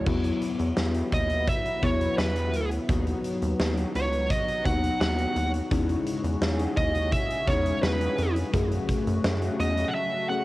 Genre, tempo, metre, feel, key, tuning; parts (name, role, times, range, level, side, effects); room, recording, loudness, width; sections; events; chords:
1980s-style pop; 85 BPM; 4/4; straight; A4 = 440 Hz
glassy digital keys; accompaniment; 0.0-10.4 s; F#3 to G#4; -30 LUFS; left 4 dB; chorus
sweeping resonant pad; sustained chords; 0.0-10.4 s; C#3 to G#4; -34 LUFS; equal; chorus
rubbery square bass; bass; 0.1-9.8 s; C#2 to F#2; -28 LUFS; equal
huge arena drum kit; drums; 0.1-9.9 s; crash cymbal, hi-hat, kick drum, snare drum; -30 LUFS; equal
fuzz lead guitar; melody; 1.1-10.4 s; B4 to F#5; -29 LUFS; right 2 dB; distortion, cassette tape, tape echo
light reverb, small room ambience; home recording on cassette; -24 LUFS; side -18 dB against mid
0.1-10.4 A section
0.1 Esus2; 2.9 B; 5.7 C#madd9; 8.5 F#madd9